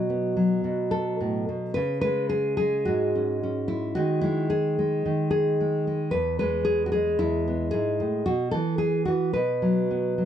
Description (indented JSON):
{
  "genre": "folk, solo fingerstyle acoustic guitar",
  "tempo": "110 BPM",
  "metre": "4/4",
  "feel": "rubato",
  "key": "unclear",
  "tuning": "A4 = 440 Hz",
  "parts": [
    { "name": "nylon-string guitar", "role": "solo", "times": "0.0-10.3 s", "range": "E2 to B4", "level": "-23 LUFS", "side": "equal", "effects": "none" }
  ],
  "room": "moderate small room ambience, RT60 0.5 s",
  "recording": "nothing above 10.8 kHz",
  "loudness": "-23 LUFS",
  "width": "side -9 dB against mid",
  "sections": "0.0-10.3 A section",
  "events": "none",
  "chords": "0.0 B5; 1.7 C#5; 4.0 G#5/D#; 6.1 E; 8.3 Bsus4; 9.3 B5"
}